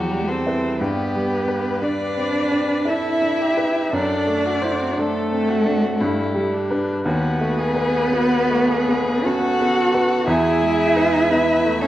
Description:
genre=classical, slow romantic movement for piano quartet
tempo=58 BPM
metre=3/4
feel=rubato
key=unclear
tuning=A4 = 440 Hz
part: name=rich violin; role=melody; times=0.0-11.9 s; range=F#4 to F#5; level=-25 LUFS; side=left 4 dB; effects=none
part: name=rich cello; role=second line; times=0.0-11.9 s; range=F#3 to F#4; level=-21 LUFS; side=right 2 dB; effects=none
part: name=warm violin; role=second line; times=0.0-11.9 s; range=D4 to B4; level=-28 LUFS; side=left 2 dB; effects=none
part: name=clear baby grand piano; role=accompaniment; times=0.0-11.9 s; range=D#2 to C5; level=-22 LUFS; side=equal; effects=none
room=wet scoring stage reverb, RT60 1.9 s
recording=worn, warbling old tape, cassette tape, warbly pitch drift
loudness=-17 LUFS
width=side -14 dB against mid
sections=0.0-11.9 A section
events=none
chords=0.0 Em; 0.8 G; 3.9 D7/F#; 6.0 G; 7.0 B7/D#; 10.3 E

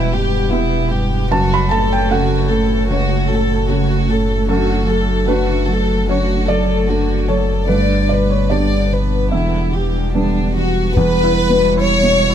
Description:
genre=neoclassical piano and strings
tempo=75 BPM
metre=4/4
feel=rubato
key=E dorian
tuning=A4 = 443 Hz
part: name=warm chamber violin section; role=melody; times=0.0-12.3 s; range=D4 to D5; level=-19 LUFS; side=left 2 dB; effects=none
part: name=dark cello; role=second line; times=0.0-12.3 s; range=G2 to G3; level=-22 LUFS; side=right 6 dB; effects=none
part: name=felt-muted upright piano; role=accompaniment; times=0.0-12.3 s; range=C#2 to B5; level=-19 LUFS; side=right 2 dB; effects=none
part: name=warbly tape-like pad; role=sustained chords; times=0.0-12.3 s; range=G3 to E5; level=-26 LUFS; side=left 1 dB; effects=chorus, built-in reverb
part: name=punchy sub bass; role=bass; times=0.0-12.3 s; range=E1 to G1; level=-19 LUFS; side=left 1 dB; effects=none
room=light reverb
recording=none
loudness=-14 LUFS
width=side -9 dB against mid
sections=0.0-11.0 A section; 11.0-12.3 B section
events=none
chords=0.0 Em; 1.3 F#m; 4.5 D/F#; 7.7 G; 9.3 Em7; 11.0 Em

